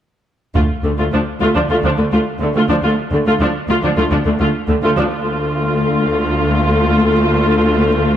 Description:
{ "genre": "cinematic, hybrid orchestral and electronic film score", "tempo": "105 BPM", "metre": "4/4", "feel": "straight", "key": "D minor", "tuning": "A4 = 440 Hz", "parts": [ { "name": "warm symphonic viola section", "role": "accompaniment", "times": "0.6-8.2 s", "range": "D3 to F4", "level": "-16 LUFS", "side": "equal", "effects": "none" }, { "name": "warm symphonic cello section", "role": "bass", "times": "0.6-8.2 s", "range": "D2", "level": "-17 LUFS", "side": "equal", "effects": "none" }, { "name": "taiko ensemble", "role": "drums", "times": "0.6-1.7 s", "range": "none", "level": "-20 LUFS", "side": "right 1 dB", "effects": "none" } ], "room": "moderate scoring stage reverb, RT60 2.1 s", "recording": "none", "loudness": "-13 LUFS", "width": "side -10 dB against mid", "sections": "0.6-5.1 A section; 5.1-8.2 B section", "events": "build-up 5.1-8.2", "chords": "0.6 Dm" }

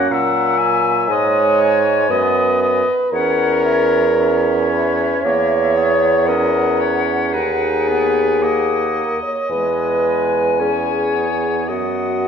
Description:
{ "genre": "classical, slow romantic movement for wind quintet", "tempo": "53-61 BPM", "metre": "4/4", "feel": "rubato", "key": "B major", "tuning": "A4 = 443 Hz", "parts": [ { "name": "silver concert flute", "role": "melody", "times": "0.0-12.3 s", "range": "E5 to G#5", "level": "-24 LUFS", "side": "left 8 dB", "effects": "none" }, { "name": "clear oboe", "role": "second line", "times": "0.0-12.3 s", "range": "B4 to F#5", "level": "-22 LUFS", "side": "left 4 dB", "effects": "none" }, { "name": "bright clarinet", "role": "accompaniment", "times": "0.0-12.3 s", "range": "F#3 to D#4", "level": "-25 LUFS", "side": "right 6 dB", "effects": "none" }, { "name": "warm French horn", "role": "accompaniment", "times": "0.0-12.3 s", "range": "C#4 to C#5", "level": "-18 LUFS", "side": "equal", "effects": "none" }, { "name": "warm bassoon", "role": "bass", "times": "0.0-12.3 s", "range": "D#2 to A#2", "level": "-20 LUFS", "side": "right 2 dB", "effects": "none" } ], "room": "moderate recital hall reverb, RT60 1.6 s", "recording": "dark, warm production", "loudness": "-14 LUFS", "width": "side -7 dB against mid", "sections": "0.0-12.3 A section", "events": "none", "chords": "0.0 F#; 1.1 G#m7; 3.1 C#m/E; 7.3 B/D#; 9.5 C#m7/E; 11.7 B/F#" }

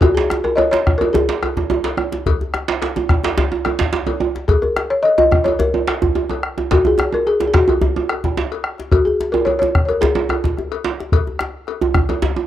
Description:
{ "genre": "west african traditional, West African drum ensemble", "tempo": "108 BPM", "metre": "4/4", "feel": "straight", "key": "F# major pentatonic", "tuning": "A4 = 440 Hz", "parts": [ { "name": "balafon", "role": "melody", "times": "0.0-10.5 s", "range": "F#4 to D#5", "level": "-17 LUFS", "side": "left 2 dB", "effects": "none" }, { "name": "bombo", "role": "percussion", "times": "0.0-12.4 s", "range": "none", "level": "-18 LUFS", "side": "left 1 dB", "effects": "none" }, { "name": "cowbell", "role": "percussion", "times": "0.0-12.2 s", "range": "none", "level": "-27 LUFS", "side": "left 11 dB", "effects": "none" }, { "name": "djembe", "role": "percussion", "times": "0.0-12.4 s", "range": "none", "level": "-24 LUFS", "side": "left 2 dB", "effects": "none" }, { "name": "djembe", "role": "percussion", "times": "0.0-12.5 s", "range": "none", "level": "-19 LUFS", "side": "right 6 dB", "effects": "none" } ], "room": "small room ambience", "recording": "dry, close 1970s-style studio recording", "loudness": "-15 LUFS", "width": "side -12 dB against mid", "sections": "0.0-12.5 A section", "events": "none", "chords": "none" }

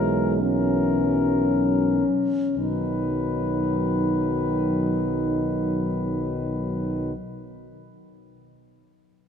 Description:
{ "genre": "classical, hymn-like piece for brass band", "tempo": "26-31 BPM (dotted quarters)", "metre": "6/8", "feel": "rubato", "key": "B major", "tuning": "A4 = 441 Hz", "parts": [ { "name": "warm cornet", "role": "melody", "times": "0.0-7.1 s", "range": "A#4 to B4", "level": "-31 LUFS", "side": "left 9 dB", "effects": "none" }, { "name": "dark French horn section", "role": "second line", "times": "0.0-7.1 s", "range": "G#3 to D#4", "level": "-25 LUFS", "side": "right 1 dB", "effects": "none" }, { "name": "clear trombone", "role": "accompaniment", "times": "0.0-7.1 s", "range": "D#3 to E3", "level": "-32 LUFS", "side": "right 1 dB", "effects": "none" }, { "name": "warm euphonium", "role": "accompaniment", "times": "0.0-7.1 s", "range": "F#3", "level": "-34 LUFS", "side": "left 2 dB", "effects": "none" }, { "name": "dark tuba", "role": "bass", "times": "0.0-7.1 s", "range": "B1", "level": "-27 LUFS", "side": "left 1 dB", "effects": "none" } ], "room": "wet church reverb, RT60 3.7 s", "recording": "none", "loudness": "-21 LUFS", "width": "side -7 dB against mid", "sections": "0.0-2.6 A section; 2.6-6.5 B section", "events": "slowing down 0.0-2.6", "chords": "0.0 F#7/B; 2.6 B" }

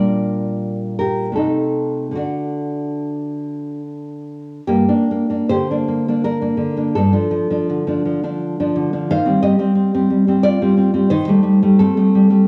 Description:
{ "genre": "romantic piece for solo classical guitar", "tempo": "68-90 BPM", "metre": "3/4", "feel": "rubato", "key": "G minor", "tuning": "A4 = 440 Hz", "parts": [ { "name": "nylon-string guitar", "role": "solo", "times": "0.0-12.5 s", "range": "G2 to F5", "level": "-18 LUFS", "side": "equal", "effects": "none" } ], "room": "light reverb, studio reverb", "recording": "home recording on cassette", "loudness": "-18 LUFS", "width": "mono", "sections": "0.0-4.7 A section; 4.7-12.5 B section", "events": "none", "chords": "0.0 Gm/Bb; 1.4 Adim/C; 2.2 D; 4.7 Gm; 7.0 Dm/G; 9.1 Cm/Eb; 11.1 Am7b5/Eb" }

